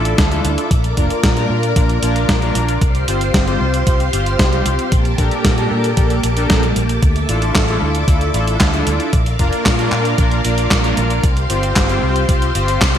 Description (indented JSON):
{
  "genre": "italo disco",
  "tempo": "114 BPM",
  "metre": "4/4",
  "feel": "straight",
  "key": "unclear",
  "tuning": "A4 = 437 Hz",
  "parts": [
    { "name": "string machine, full ensemble", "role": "sustained chords", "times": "0.0-13.0 s", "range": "Bb3 to D6", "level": "-22 LUFS", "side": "equal", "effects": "ensemble chorus" },
    { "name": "analog synth brass", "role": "stabs", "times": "0.0-13.0 s", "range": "Bb3 to C5", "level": "-20 LUFS", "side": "left 1 dB", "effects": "chorus, ping-pong delay" },
    { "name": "fingered electric bass with an envelope filter", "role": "bass", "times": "0.0-13.0 s", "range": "F1 to Bb2", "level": "-19 LUFS", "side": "equal", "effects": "none" },
    { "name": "clean 12-bit digital drum machine", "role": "drums", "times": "0.1-13.0 s", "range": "handclaps, hi-hat, snare drum", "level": "-20 LUFS", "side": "equal", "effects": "gated reverb" },
    { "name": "electronic kick drum", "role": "drums", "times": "0.2-12.9 s", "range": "none", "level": "-16 LUFS", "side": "equal", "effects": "none" }
  ],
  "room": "light reverb",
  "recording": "bright 1980s-style digital production",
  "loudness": "-13 LUFS",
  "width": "side -10 dB against mid",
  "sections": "0.0-13.0 A section",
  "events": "none",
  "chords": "0.0 Dmadd9; 0.7 Bb; 2.8 Csus4; 4.9 Gmadd9/Bb; 7.0 Dmadd9; 9.1 Bb; 11.2 Csus4",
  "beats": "0.18 | 0.71 1.24 1.76 2.29 | 2.81 3.34 3.87 4.39 | 4.92 5.45 5.97 6.50 | 7.02 7.55 8.08 8.60 | 9.13 9.66 10.18 10.71 | 11.23 11.76 12.29 12.81"
}